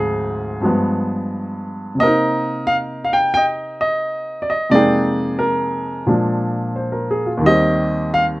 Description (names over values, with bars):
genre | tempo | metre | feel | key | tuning
solo jazz | 88 BPM | 4/4 | swing 68% on 8ths | unclear | A4 = 443 Hz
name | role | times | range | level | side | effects
warm baby grand piano | solo | 0.0-8.4 s | D2 to G5 | -16 LUFS | equal | none
room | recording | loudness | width
little or no reverb | close, detailed microphones | -16 LUFS | side -20 dB against mid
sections
0.0-8.4 A section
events
none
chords
0.0 Dm7b5; 0.6 G7b9; 2.0 Cm7; 4.7 Fm11; 6.1 Bb7; 7.4 Eb6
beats
0.63 1.31 | 2.00 2.68 3.36 4.04 | 4.72 5.40 6.08 6.76 | 7.44 8.13